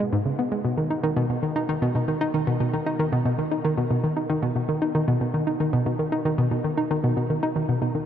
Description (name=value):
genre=ambient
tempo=115 BPM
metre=4/4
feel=straight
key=unclear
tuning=A4 = 441 Hz
part: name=hollow square pluck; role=solo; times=0.0-8.1 s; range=G#2 to D#4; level=-22 LUFS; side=equal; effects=chorus, tape echo
room=wet huge ambient reverb, RT60 8.9 s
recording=worn, warbling old tape, cassette tape, warbly pitch drift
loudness=-22 LUFS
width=side -9 dB against mid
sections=0.0-8.1 A section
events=none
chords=none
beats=0.12 | 0.65 1.17 1.69 2.21 | 2.73 3.25 3.78 4.30 | 4.82 5.34 5.86 6.38 | 6.91 7.43 7.95